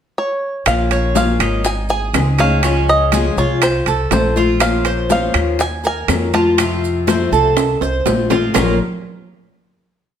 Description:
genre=latin, Cuban son and guajira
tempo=122 BPM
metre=4/4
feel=straight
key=Bb minor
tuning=A4 = 439 Hz
part: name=bluegrass banjo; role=melody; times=0.2-8.8 s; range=C5 to A5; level=-20 LUFS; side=equal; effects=none
part: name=picked steel-string acoustic guitar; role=accompaniment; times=0.7-8.8 s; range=Bb2 to C5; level=-20 LUFS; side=left 6 dB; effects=none
part: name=upright bass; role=bass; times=0.7-8.8 s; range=Ab1 to F2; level=-19 LUFS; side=equal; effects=none
part: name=bongos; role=percussion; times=0.7-8.7 s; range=none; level=-25 LUFS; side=left 5 dB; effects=none
part: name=claves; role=percussion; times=0.7-8.7 s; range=none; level=-29 LUFS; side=left 4 dB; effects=none
part: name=congas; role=percussion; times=0.7-8.7 s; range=none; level=-24 LUFS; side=left 3 dB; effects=none
part: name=maracas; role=percussion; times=0.7-8.7 s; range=none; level=-30 LUFS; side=right 6 dB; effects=none
part: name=timbales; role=percussion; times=0.7-8.7 s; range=none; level=-22 LUFS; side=right 10 dB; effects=none
part: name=Cuban tres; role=arpeggios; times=0.9-8.8 s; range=Bb3 to Db5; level=-20 LUFS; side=right 4 dB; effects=none
room=moderate large studio reverb, RT60 1.2 s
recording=none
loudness=-13 LUFS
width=side -8 dB against mid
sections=0.0-0.7 pickup bar; 0.7-8.6 verse; 8.6-10.2 final chord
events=drum fill 7.6-8.6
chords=0.0 N.C.; 0.7 Bbm; 1.7 Ab; 2.6 Db; 3.6 F/C; 4.6 Bbmadd9; 5.6 Ebmadd9; 6.6 F; 8.6 Bb5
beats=0.17 | 0.67 1.16 1.65 2.14 | 2.63 3.13 3.62 4.11 | 4.60 5.10 5.59 6.08 | 6.58 7.07 7.57 8.06 | 8.55

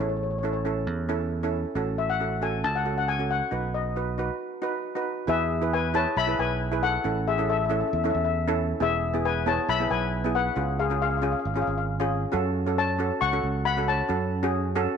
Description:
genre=calypso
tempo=136 BPM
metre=4/4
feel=swing 53% on 16ths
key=E major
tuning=A4 = 439 Hz
part: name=steel pan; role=melody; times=0.0-14.7 s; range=G#4 to C#6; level=-26 LUFS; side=left 7 dB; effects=none
part: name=steel pan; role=accompaniment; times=0.0-15.0 s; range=B3 to B4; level=-29 LUFS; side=right 3 dB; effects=none
part: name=fingered electric bass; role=bass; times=0.0-14.9 s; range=E1 to F#2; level=-29 LUFS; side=right 3 dB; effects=none
room=moderate echo chamber reverb, RT60 1.6 s, small room ambience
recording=none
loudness=-24 LUFS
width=side -7 dB against mid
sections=0.0-5.3 A section; 5.3-15.0 B section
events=none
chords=0.0 A; 1.8 F#m/A; 3.5 B; 5.3 E; 7.0 A; 8.8 E; 10.6 C#; 12.3 F#m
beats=0.43 0.87 1.31 | 1.75 2.20 2.64 3.08 | 3.52 3.96 4.40 4.84 | 5.29 5.73 6.17 6.61 | 7.05 7.49 7.93 8.37 | 8.81 9.25 9.69 10.13 | 10.57 11.01 11.45 11.89 | 12.33 12.77 13.21 13.65 | 14.09 14.53

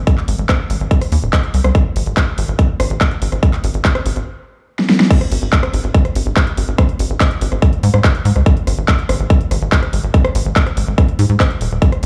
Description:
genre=psychedelic trance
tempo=143 BPM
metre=4/4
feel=straight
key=Ab major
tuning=A4 = 439 Hz
part: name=tight sequencer bass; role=bass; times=0.0-12.1 s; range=Eb1 to Ab2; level=-18 LUFS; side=equal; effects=none
part: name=big-room dance drum kit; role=drums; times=0.1-12.1 s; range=crash cymbal, handclaps, hi-hat, rim click, snare drum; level=-22 LUFS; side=equal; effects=overdrive, studio ambience
part: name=electronic kick drum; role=drums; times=0.1-11.9 s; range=none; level=-16 LUFS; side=equal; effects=overdrive, studio ambience
room=little or no reverb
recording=small room reverb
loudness=-15 LUFS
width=mono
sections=0.0-5.1 A section; 5.1-12.1 B section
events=drum fill 4.8-5.1; drop 5.1-12.1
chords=none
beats=| 0.07 0.49 0.91 1.33 | 1.75 2.17 2.59 3.01 | 3.43 3.85 4.27 4.69 | 5.11 5.53 5.95 6.36 | 6.78 7.20 7.62 8.04 | 8.46 8.88 9.30 9.72 | 10.14 10.56 10.98 11.40 | 11.82

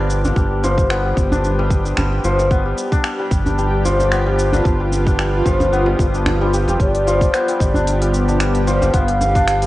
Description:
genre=organic downtempo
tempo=112 BPM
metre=4/4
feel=swing 54% on 16ths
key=unclear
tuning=A4 = 440 Hz
part: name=granular cloud pad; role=sustained chords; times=0.0-9.7 s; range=B3 to Eb6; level=-24 LUFS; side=equal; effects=built-in reverb, sidechain pumping
part: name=santur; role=arpeggios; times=0.0-9.7 s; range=F3 to G4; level=-20 LUFS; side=left 1 dB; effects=ping-pong delay
part: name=round analog bass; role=bass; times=0.0-9.7 s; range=F1 to G1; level=-19 LUFS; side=equal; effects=sidechain pumping
part: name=organic electronic drum kit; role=drums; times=0.1-9.7 s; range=finger snaps, hi-hat, shaker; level=-27 LUFS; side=equal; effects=none
part: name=djembe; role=percussion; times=0.3-9.3 s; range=none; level=-26 LUFS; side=right 1 dB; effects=none
part: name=electronic kick drum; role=drums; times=0.4-9.4 s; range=none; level=-18 LUFS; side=equal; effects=none
part: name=mellow bansuri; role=melody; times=6.8-9.7 s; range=C5 to G5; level=-21 LUFS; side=equal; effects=ping-pong delay
room=light reverb, small room ambience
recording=worn, warbling old tape, cassette tape, warbly pitch drift, nothing above 10.3 kHz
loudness=-14 LUFS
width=side -16 dB against mid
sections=0.0-9.7 A section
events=none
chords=0.4 G7b13; 2.5 G7; 4.7 Fsus2/G; 6.8 G7; 8.9 G7b13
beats=| 0.37 0.90 1.44 1.98 | 2.51 3.05 3.58 4.12 | 4.65 5.19 5.73 6.26 | 6.80 7.33 7.87 8.40 | 8.94 9.48

